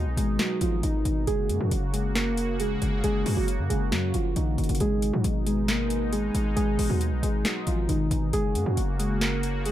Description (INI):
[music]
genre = hip hop, trap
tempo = 136 BPM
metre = 4/4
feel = half-time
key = G# dorian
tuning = A4 = 440 Hz
[part]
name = sweeping resonant pad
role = sustained chords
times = 0.0-9.7 s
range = B2 to F#4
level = -33 LUFS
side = equal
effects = chorus
[part]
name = hard-hitting 808-style bass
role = bass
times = 0.0-9.7 s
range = F#1 to G#2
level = -27 LUFS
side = equal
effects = none
[part]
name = muted felt-like synth keys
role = melody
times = 0.2-9.7 s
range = D#3 to A#4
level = -28 LUFS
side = equal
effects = chorus
[part]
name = trap drum kit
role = drums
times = 0.2-9.7 s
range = hi-hat, snare drum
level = -31 LUFS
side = equal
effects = overdrive
[sound]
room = little or no reverb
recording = dark, warm production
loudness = -23 LUFS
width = side -12 dB against mid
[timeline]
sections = 0.0-9.7 A section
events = none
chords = 0.0 G#m; 1.3 F#; 4.8 G#m; 8.3 F#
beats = 0.39 0.83 | 1.27 1.71 2.15 2.60 | 3.04 3.48 3.92 4.36 | 4.80 5.24 5.68 6.13 | 6.57 7.01 7.45 7.89 | 8.33 8.77 9.21 9.65